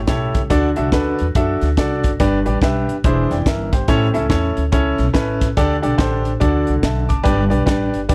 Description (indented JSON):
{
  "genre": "uptempo gospel",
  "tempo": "142 BPM",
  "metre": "4/4",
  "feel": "swing 62% on 8ths",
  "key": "unclear",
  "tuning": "A4 = 440 Hz",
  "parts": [
    { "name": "clear baby grand piano", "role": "accompaniment", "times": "0.0-8.1 s", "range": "G2 to D6", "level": "-21 LUFS", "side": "equal", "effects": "none" },
    { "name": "upright bass", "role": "bass", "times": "0.0-8.1 s", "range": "E1 to F#2", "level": "-23 LUFS", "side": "equal", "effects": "none" },
    { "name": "crisp fusion drum kit", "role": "drums", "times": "0.1-8.1 s", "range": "hi-hat, kick drum, snare drum", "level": "-22 LUFS", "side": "equal", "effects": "none" }
  ],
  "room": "small room reverb",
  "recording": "none",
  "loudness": "-17 LUFS",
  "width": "mono",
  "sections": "0.0-8.1 A section",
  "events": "none",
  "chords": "0.0 A7; 0.5 D; 2.2 G; 3.0 E7alt; 3.9 A; 5.6 Dsus4; 6.4 D; 7.3 G"
}